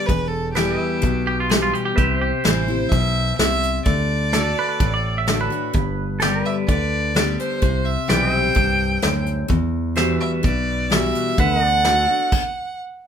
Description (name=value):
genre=honky-tonk and classic country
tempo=128 BPM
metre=4/4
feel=straight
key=unclear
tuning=A4 = 440 Hz
part: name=rich fiddle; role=melody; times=0.0-12.8 s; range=G4 to G5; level=-22 LUFS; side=right 1 dB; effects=none
part: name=picked steel-string acoustic guitar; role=accompaniment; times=0.0-12.3 s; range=E2 to G4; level=-24 LUFS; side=left 4 dB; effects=none
part: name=pedal steel guitar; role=sustained chords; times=0.0-12.3 s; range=A4 to E5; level=-28 LUFS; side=right 2 dB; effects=none
part: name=fingered electric bass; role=bass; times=0.1-12.1 s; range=E1 to E2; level=-24 LUFS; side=right 1 dB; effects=none
part: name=soft brush drum kit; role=drums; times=0.1-12.4 s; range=crash cymbal, hi-hat, kick drum, snare drum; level=-21 LUFS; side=equal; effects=none
part: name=twangy electric guitar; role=second line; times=1.3-6.4 s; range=F4 to E5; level=-24 LUFS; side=right 4 dB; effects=none
room=moderate studio ambience, RT60 0.5 s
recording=minimal, uncompressed stereo recording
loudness=-17 LUFS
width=side -8 dB against mid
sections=0.0-13.1 A section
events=stop 12.3-13.1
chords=0.1 Em; 2.0 C; 3.9 D; 5.7 G; 7.6 C; 9.5 Emadd9; 11.4 D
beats=| 0.08 0.56 1.03 1.50 | 1.97 2.44 2.91 3.38 | 3.85 4.33 4.80 5.27 | 5.74 6.21 6.68 7.15 | 7.62 8.09 8.56 9.03 | 9.50 9.97 10.44 10.91 | 11.38 11.85 12.32 12.79